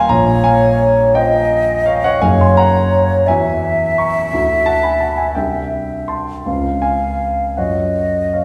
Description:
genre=classical, impressionist duo for flute and grand piano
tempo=57 BPM (dotted quarters)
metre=6/8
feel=uneven beats, rubato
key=unclear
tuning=A4 = 440 Hz
part: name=dark baby grand piano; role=accompaniment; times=0.0-8.4 s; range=Gb1 to Db6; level=-18 LUFS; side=equal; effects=none
part: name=mellow hollow silver concert flute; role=melody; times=0.1-8.4 s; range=Db5 to F5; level=-18 LUFS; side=equal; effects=none
room=wet recital hall reverb, RT60 1.6 s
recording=heard from further back in the room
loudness=-15 LUFS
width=mono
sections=0.0-8.4 A section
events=none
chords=0.1 Bbm9; 2.2 Gb69; 3.3 Eadd9; 4.3 Dadd9; 5.4 C69; 6.4 Dbmaj7; 7.6 Gb5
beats=| 0.09 1.14 | 2.20 3.27 | 4.32 5.36 | 6.45 7.56

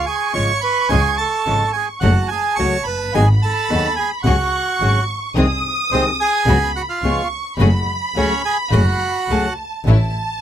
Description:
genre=tango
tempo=107 BPM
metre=4/4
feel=rubato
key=F# minor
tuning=A4 = 440 Hz
part: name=bandoneon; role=melody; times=0.0-9.5 s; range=B#3 to C#6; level=-19 LUFS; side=right 4 dB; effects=none
part: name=warm studio violin section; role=second line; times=0.0-10.4 s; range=A5 to D#6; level=-24 LUFS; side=right 1 dB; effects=none
part: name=nylon-string guitar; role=accompaniment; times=0.3-10.0 s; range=B#2 to G#4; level=-20 LUFS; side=left 3 dB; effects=none
part: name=dark studio string section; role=stabs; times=0.3-10.1 s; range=G#3 to G#4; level=-28 LUFS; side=left 2 dB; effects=none
part: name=rich double bass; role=bass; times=0.3-10.1 s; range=F#1 to D#2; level=-18 LUFS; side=equal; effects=none
room=little or no reverb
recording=close, detailed microphones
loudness=-15 LUFS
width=side -10 dB against mid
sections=0.0-9.9 A section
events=none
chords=0.0 C#; 2.0 F#m; 3.1 G#m7; 4.3 C#sus4; 5.4 G#/B#; 6.5 C#7sus4; 7.0 C#7; 7.6 F#madd9; 9.9 A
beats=0.34 | 0.91 1.47 2.03 2.59 | 3.15 3.71 4.26 4.81 | 5.37 5.92 6.47 7.03 | 7.59 8.15 8.71 9.29 | 9.85

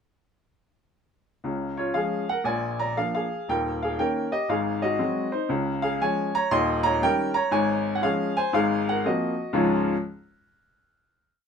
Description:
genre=jazz, stride piano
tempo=118 BPM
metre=4/4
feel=swing 66% on 8ths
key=Db major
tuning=A4 = 440 Hz
part: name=bright upright piano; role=solo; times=1.4-9.9 s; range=Eb1 to C6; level=-23 LUFS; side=equal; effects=none
room=moderate studio reverb, RT60 0.6 s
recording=minimal, uncompressed stereo recording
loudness=-23 LUFS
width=side -6 dB against mid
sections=1.4-9.6 A section; 9.6-11.5 final chord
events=none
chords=1.4 Db; 2.5 Bb7; 3.5 Eb7; 4.5 Ab7; 5.5 Db; 6.5 Eb7; 7.5 Db/Ab; 8.5 Ab13; 9.6 Db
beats=| 1.45 1.96 2.46 2.96 | 3.47 3.98 4.48 4.99 | 5.50 6.00 6.51 7.02 | 7.52 8.03 8.54 9.05 | 9.55

